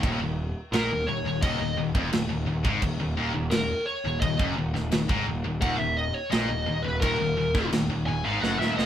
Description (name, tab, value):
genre	heavy metal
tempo	86 BPM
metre	4/4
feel	straight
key	Eb minor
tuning	A4 = 437 Hz
part	high-gain distorted guitar	riff	0.0-8.9 s	Eb2 to Bb2	-30 LUFS	left 4 dB	distortion
part	scooped high-gain guitar	riff	0.0-8.9 s	Eb2 to Bb2	-34 LUFS	right 5 dB	distortion
part	tight distorted guitar	riff	0.0-8.9 s	Eb2 to Bb2	-36 LUFS	equal	none
part	fuzz picked electric bass	bass	0.0-8.9 s	Eb1 to Bb1	-32 LUFS	equal	overdrive
part	tight metal drum kit	drums	0.0-8.9 s	crash cymbal, kick drum, snare drum	-29 LUFS	right 1 dB	none
part	high-gain lead guitar	melody	0.7-8.9 s	Bb4 to Ab5	-28 LUFS	equal	distortion
room	moderate small room reverb, RT60 0.6 s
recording	band playing live in one room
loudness	-24 LUFS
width	side -10 dB against mid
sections	0.0-8.9 A section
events	lead electric guitar solo 0.0-8.9; drum fill 8.4-8.9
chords	0.0 Ebm